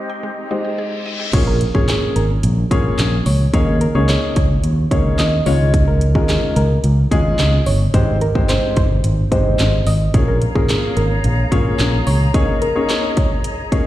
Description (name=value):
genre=dance-pop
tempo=109 BPM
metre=4/4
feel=straight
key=Bb dorian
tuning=A4 = 440 Hz
part: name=warm baby grand piano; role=accompaniment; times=0.0-13.9 s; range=Ab3 to Db5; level=-21 LUFS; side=left 2 dB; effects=sidechain pumping, low-pass filter, slapback echo
part: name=small flute group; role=sustained chords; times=0.0-1.3, 10.1-13.9 s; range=C4 to Bb5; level=-27 LUFS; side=equal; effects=sidechain pumping, low-pass filter
part: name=mallet-like synth pluck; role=arpeggios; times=0.1-1.3 s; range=Ab3 to G5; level=-32 LUFS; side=equal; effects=chorus, phaser, sidechain pumping, low-pass filter, slapback echo, ping-pong delay
part: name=reverse cymbal and impact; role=sound effects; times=0.5-3.5 s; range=none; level=-30 LUFS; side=left 1 dB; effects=none
part: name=fingered electric bass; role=bass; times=1.3-12.3 s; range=G1 to Eb2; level=-16 LUFS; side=equal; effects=sidechain pumping
part: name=house drum kit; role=drums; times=1.3-13.8 s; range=crash cymbal, handclaps, hi-hat, kick drum, snare drum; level=-18 LUFS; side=equal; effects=none
part: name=soft round pluck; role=melody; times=1.5-13.8 s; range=Ab4 to Eb5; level=-24 LUFS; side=right 1 dB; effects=chorus, slapback echo, ping-pong delay
room=little or no reverb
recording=live gig heard through the venue's PA, recital hall reverb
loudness=-14 LUFS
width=side -14 dB against mid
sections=0.0-1.3 A section; 1.3-13.9 B section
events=filter sweep 0.0-1.3; reverse cymbal 0.5-1.3; drop 1.3-13.9; impact 1.3-3.5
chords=0.0 Abmaj7; 1.3 Bbm7; 3.5 Eb7sus4; 5.5 Dbadd9; 7.9 Abmaj7; 10.1 Bbm7; 12.3 Eb7sus4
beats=0.23 0.78 | 1.33 1.88 2.44 2.98 | 3.54 4.09 4.64 5.19 | 5.74 6.29 6.84 7.39 | 7.94 8.49 9.04 9.59 | 10.14 10.69 11.24 11.79 | 12.34 12.89 13.44